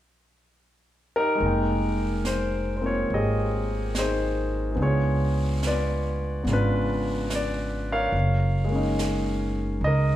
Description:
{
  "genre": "jazz ballad",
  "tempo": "71 BPM",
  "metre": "4/4",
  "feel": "swing 69% on 8ths",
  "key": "F minor",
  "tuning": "A4 = 440 Hz",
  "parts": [
    { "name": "warm concert grand piano", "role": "accompaniment", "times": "1.2-10.2 s", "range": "Db3 to G5", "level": "-25 LUFS", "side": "left 1 dB", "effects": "none" },
    { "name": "upright bass", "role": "bass", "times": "1.4-10.2 s", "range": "F1 to Db2", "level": "-26 LUFS", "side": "equal", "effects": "none" },
    { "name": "jazz brush drum kit", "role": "drums", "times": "1.4-10.2 s", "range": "brushed snare drum, hi-hat, snare drum", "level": "-36 LUFS", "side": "right 3 dB", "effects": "none" }
  ],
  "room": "moderate recital hall reverb, RT60 1.5 s",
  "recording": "recorded in a church or concert hall, faint mains hum",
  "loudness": "-23 LUFS",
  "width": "side -13 dB against mid",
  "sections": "0.0-1.4 A section; 1.4-10.2 B section",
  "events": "none",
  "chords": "0.0 Eb; 1.4 Fm11; 4.8 Db7b9; 8.1 Gb6"
}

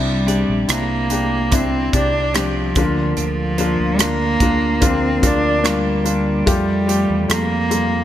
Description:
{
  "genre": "pop ballad",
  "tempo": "73 BPM",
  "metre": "4/4",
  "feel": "straight",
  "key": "unclear",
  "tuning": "A4 = 440 Hz",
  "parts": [
    { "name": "warm cello", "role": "melody", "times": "0.0-8.0 s", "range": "F3 to D4", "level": "-19 LUFS", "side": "right 1 dB", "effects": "none" },
    { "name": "felt-muted upright piano", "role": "accompaniment", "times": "0.0-8.0 s", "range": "C3 to A4", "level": "-22 LUFS", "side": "left 5 dB", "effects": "none" },
    { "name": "twelve-string electric guitar", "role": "arpeggios", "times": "0.0-8.0 s", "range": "F2 to D5", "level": "-28 LUFS", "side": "right 6 dB", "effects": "ping-pong delay" },
    { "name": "fingered electric bass", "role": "bass", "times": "0.0-8.0 s", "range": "Bb1 to F2", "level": "-23 LUFS", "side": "equal", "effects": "none" },
    { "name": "modern studio drum kit", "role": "drums", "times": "0.3-7.9 s", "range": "hi-hat, kick drum, rim click", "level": "-21 LUFS", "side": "right 1 dB", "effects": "none" }
  ],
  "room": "light reverb, small room ambience",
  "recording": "bright 1980s-style digital production",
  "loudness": "-15 LUFS",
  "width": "side -11 dB against mid",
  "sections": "0.0-8.0 A section",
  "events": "none",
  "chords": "0.0 Cadd9; 2.8 Bb/D; 6.5 Fadd9"
}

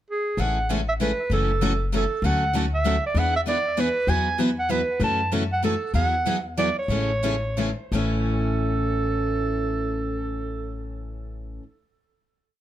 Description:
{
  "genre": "acoustic string swing (jazz manouche)",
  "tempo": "164-195 BPM",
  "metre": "3/4",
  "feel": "swing 58% on 8ths",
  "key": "A major",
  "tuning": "A4 = 440 Hz",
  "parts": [
    { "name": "breathy clarinet", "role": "melody", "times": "0.1-10.9 s", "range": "G#4 to A5", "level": "-25 LUFS", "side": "right 3 dB", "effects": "tape echo" },
    { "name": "picked steel-string acoustic guitar", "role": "accompaniment", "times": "0.4-11.6 s", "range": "A2 to B4", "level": "-28 LUFS", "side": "left 4 dB", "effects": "none" },
    { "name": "picked steel-string acoustic guitar", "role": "accompaniment", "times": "0.4-11.6 s", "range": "A2 to B4", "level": "-31 LUFS", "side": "right 4 dB", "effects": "none" },
    { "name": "upright bass", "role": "bass", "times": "0.4-11.6 s", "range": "F#1 to F#2", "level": "-27 LUFS", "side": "left 1 dB", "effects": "none" }
  ],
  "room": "moderate small room ambience, RT60 0.5 s",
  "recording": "none",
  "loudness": "-21 LUFS",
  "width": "side -12 dB against mid",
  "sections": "0.0-0.4 pickup bar; 0.4-7.9 A section; 7.9-10.1 final chord",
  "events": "slowing down 5.9-7.9",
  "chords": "0.4 Amaj7; 1.3 F#m7; 2.2 Dmaj7; 3.2 E7; 4.1 Esus2; 5.0 F#m7; 5.9 Eadd9; 6.9 Amaj7; 7.9 A"
}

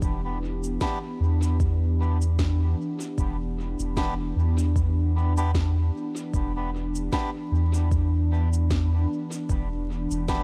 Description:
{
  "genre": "ambient dub",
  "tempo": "76 BPM",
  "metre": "4/4",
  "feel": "swing 56% on 16ths",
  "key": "E minor",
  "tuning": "A4 = 441 Hz",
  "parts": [
    { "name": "warbly tape-like pad", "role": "sustained chords", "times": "0.0-10.4 s", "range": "E3 to G4", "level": "-34 LUFS", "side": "equal", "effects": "chorus, built-in reverb" },
    { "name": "soft dub sub bass", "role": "bass", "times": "0.0-10.4 s", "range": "E1 to E2", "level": "-26 LUFS", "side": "equal", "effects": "none" },
    { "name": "electronic kick drum", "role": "drums", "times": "0.0-10.4 s", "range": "none", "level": "-30 LUFS", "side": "equal", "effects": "overdrive" },
    { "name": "electronic shaker and snare drum", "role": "drums", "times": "0.0-10.4 s", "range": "none", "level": "-39 LUFS", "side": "equal", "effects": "overdrive, dub echo" },
    { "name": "melodica", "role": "stabs", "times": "0.8-10.4 s", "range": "B3 to G4", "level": "-38 LUFS", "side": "equal", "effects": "dub echo" }
  ],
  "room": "little or no reverb",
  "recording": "vinyl crackle",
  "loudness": "-25 LUFS",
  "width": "mono",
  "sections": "0.0-10.4 A section",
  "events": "none",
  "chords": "0.0 Em7"
}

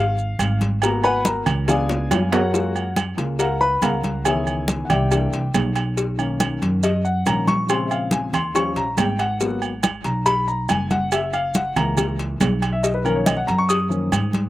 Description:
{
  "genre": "Afro-Cuban jazz",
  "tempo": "140 BPM",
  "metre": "4/4",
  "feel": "straight",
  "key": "F# major",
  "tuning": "A4 = 439 Hz",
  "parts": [
    { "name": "warm baby grand piano", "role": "accompaniment", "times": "0.0-14.3 s", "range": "C#3 to D#6", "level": "-22 LUFS", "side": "left 2 dB", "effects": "slapback echo" },
    { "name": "upright bass", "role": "bass", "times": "0.0-14.5 s", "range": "F#1 to G#2", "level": "-23 LUFS", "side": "right 1 dB", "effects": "none" },
    { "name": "congas", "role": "percussion", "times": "0.2-14.5 s", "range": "none", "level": "-24 LUFS", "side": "equal", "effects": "none" },
    { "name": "maracas", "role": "percussion", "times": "0.2-14.5 s", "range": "none", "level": "-33 LUFS", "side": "right 8 dB", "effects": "none" },
    { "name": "agogo bells and timbales", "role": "percussion", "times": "0.4-14.3 s", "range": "none", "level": "-26 LUFS", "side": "right 6 dB", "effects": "slapback echo" },
    { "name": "cowbell and bongos", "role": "percussion", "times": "0.4-14.5 s", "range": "none", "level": "-28 LUFS", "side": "left 4 dB", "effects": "slapback echo" }
  ],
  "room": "little or no reverb",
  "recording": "recorded outdoors, with no room sound",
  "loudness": "-18 LUFS",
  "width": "side -15 dB against mid",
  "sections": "0.0-2.5 A section; 2.5-14.5 A section",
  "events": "grand piano solo 0.0-14.5; drum fill 1.9-2.5",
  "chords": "0.0 Db (rootless); 0.8 Abm7; 1.7 Db7b9; 2.5 F#maj7; 4.3 C#m7; 5.1 C9; 6.0 Bmaj9; 7.7 A#m7; 8.6 D#7; 9.4 G#m7; 11.1 F#7; 12.8 Bmaj9#11"
}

